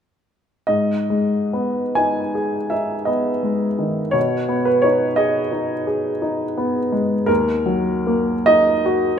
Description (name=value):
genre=classical, romantic nocturne for solo piano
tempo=44-59 BPM (dotted quarters)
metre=9/8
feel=rubato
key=G# minor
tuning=A4 = 441 Hz
part: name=warm baby grand piano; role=solo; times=0.7-9.2 s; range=D#2 to G#5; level=-17 LUFS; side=equal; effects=none
room=wet recital hall reverb, RT60 1.8 s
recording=none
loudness=-17 LUFS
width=side -8 dB against mid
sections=0.7-9.2 A section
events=none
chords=0.7 G#m; 4.2 G#m/B; 7.3 D#m